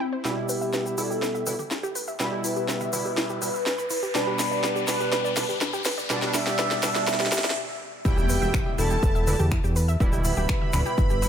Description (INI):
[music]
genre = melodic techno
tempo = 123 BPM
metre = 4/4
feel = straight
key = E minor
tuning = A4 = 440 Hz
[part]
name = expressive synth lead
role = melody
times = 0.0-11.3 s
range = C4 to E5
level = -29 LUFS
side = equal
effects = wide subtle chorus, tape echo
[part]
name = wide unison pluck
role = arpeggios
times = 0.0-11.3 s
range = D4 to E6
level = -33 LUFS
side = equal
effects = sidechain pumping, ping-pong delay
[part]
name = swell, riser and impact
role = sound effects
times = 0.0-10.0 s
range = none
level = -34 LUFS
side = left 1 dB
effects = none
[part]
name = sync-sweep polysynth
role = stabs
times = 0.2-11.3 s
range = B2 to E4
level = -31 LUFS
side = right 1 dB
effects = chorus, sidechain pumping, ping-pong delay
[part]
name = techno drum kit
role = drums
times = 0.2-11.3 s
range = finger snaps, hi-hat, snare drum, toms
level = -29 LUFS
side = equal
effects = high-pass filter on toms, high-pass filter on snare, high-pass filter on hats
[part]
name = egg shaker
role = percussion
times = 0.3-11.3 s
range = none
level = -36 LUFS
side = left 3 dB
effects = none
[part]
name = soft supersaw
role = second line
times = 8.1-11.3 s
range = G5 to B5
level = -35 LUFS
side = right 2 dB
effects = sidechain pumping, ping-pong delay
[part]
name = fat analog bass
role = bass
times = 8.1-11.3 s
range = D1 to E2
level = -25 LUFS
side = equal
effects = sidechain pumping
[part]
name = electronic kick drum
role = drums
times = 8.1-11.1 s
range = none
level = -24 LUFS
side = equal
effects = none
[sound]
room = moderate lush hall reverb, RT60 1.8 s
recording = none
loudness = -22 LUFS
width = side -8 dB against mid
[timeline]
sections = 0.2-8.1 A section; 8.1-11.3 B section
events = swell 0.0; build-up 0.2-8.1; drum fill 0.2-7.6; filter sweep on synth arpeggio sound 0.2-8.1; riser 2.1-7.6; stop 7.6-8.1; drop 8.1-11.3; impact 8.1-10.0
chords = 0.2 Em; 4.2 G; 8.1 Em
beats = | 0.25 0.73 1.22 1.71 | 2.20 2.69 3.17 3.66 | 4.15 4.64 5.12 5.61 | 6.10 6.59 7.08 7.56 | 8.05 8.54 9.03 9.52 | 10.00 10.49 10.98